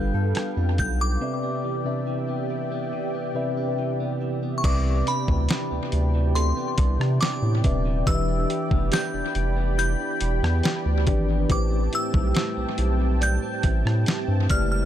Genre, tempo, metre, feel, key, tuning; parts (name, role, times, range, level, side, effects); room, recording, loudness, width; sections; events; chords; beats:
contemporary R&B; 70 BPM; 4/4; straight; A4 = 438 Hz
glassy synth bell; melody; 0.0-14.9 s; B5 to G6; -30 LUFS; left 1 dB; chorus, tremolo, tape echo
mellow tine electric piano; accompaniment; 0.0-14.9 s; C3 to F5; -29 LUFS; left 4 dB; medium stereo tremolo, tape echo
warm analog pad; sustained chords; 0.0-14.9 s; C4 to B5; -33 LUFS; right 2 dB; chorus, sidechain pumping
direct-recorded clean electric guitar; arpeggios; 0.0-14.9 s; A2 to A4; -32 LUFS; right 9 dB; tape echo
saturated sub bass; bass; 0.0-14.9 s; Eb1 to C3; -23 LUFS; equal
dusty soul sampler-style drum kit; drums; 0.3-14.7 s; crash cymbal, hi-hat, kick drum, rim click, snare drum; -25 LUFS; equal; tape echo
mallet-like synth pluck; texture; 5.1-14.9 s; G4 to D5; -37 LUFS; right 4 dB; chorus, tape echo
little or no reverb; echo-heavy mix; -21 LUFS; side -11 dB against mid
0.0-4.6 A section; 4.6-14.9 B section
break 1.2-4.6
0.0 G9; 1.2 Cmaj9; 8.1 Em7; 11.5 Am7
0.35 | 1.21 2.07 2.93 3.78 | 4.64 5.50 6.36 7.21 | 8.07 8.93 9.78 10.64 | 11.50 12.36 13.21 14.07